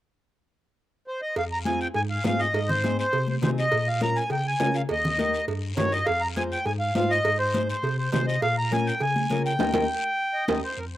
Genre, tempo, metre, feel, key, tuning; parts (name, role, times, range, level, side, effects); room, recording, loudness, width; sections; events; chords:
latin, cumbia; 204 BPM; 4/4; straight; F minor; A4 = 437 Hz
accordion; melody; 1.1-11.0 s; Bb4 to Bb5; -26 LUFS; equal
mellow tine electric piano; bass; 1.4-11.0 s; Eb2 to Db3; -29 LUFS; equal; medium stereo tremolo
cowbell and timbales; percussion; 1.4-10.6 s; -32 LUFS; right 5 dB
guiro; percussion; 1.4-11.0 s; -41 LUFS; left 7 dB
nylon-string guitar; accompaniment; 1.7-10.6 s; C4 to C5; -30 LUFS; left 2 dB; slapback echo
congas; percussion; 1.7-10.6 s; -31 LUFS; left 3 dB
little or no reverb; recorded outdoors, with no room sound; -22 LUFS; side -14 dB against mid
0.2-1.4 A section; 1.4-10.8 B section
band accent 9.6-10.8; drum fill 9.9-10.8
0.2 N.C.; 1.4 Fm; 2.5 Ab; 3.7 Bbm; 4.9 Eb; 6.1 Fm; 7.2 Ab; 8.4 Bbm; 9.6 Eb